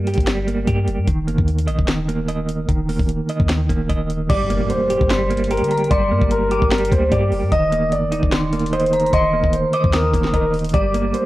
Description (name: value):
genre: hip hop, trap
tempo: 149 BPM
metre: 4/4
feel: half-time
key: G minor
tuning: A4 = 439 Hz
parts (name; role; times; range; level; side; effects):
- semi-hollow electric guitar; accompaniment; 0.0-11.3 s; Eb3 to Eb5; -22 LUFS; right 2 dB; tremolo, low-pass filter
- clean 808-style bass; bass; 0.0-11.1 s; Eb1 to D3; -22 LUFS; left 1 dB; none
- trap drum kit; drums; 0.1-11.2 s; crash cymbal, finger snaps, hi-hat, kick drum, snare drum; -22 LUFS; equal; none
- dark concert grand piano; melody; 4.3-11.3 s; Bb4 to Eb5; -20 LUFS; equal; low-pass filter, tape echo
- dark detuned synth bell; second line; 4.3-11.1 s; Bb5 to Eb6; -27 LUFS; left 1 dB; chorus, phaser, tape echo
- impact; sound effects; 4.3-5.9 s; none; -30 LUFS; left 1 dB; none
room: light reverb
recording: worn, warbling old tape, cassette tape, warbly pitch drift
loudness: -16 LUFS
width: side -16 dB against mid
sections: 0.0-4.3 A section; 4.3-11.3 B section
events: impact 4.3-5.9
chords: 0.0 Gm; 1.1 Eb5; 4.3 Gm; 7.5 Eb5; 10.7 Gm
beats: 0.27 0.67 | 1.08 1.48 1.88 2.28 | 2.69 3.09 3.49 3.90 | 4.30 4.70 5.10 5.51 | 5.91 6.31 6.71 7.12 | 7.52 7.92 8.32 8.73 | 9.13 9.53 9.94 10.34 | 10.74 11.14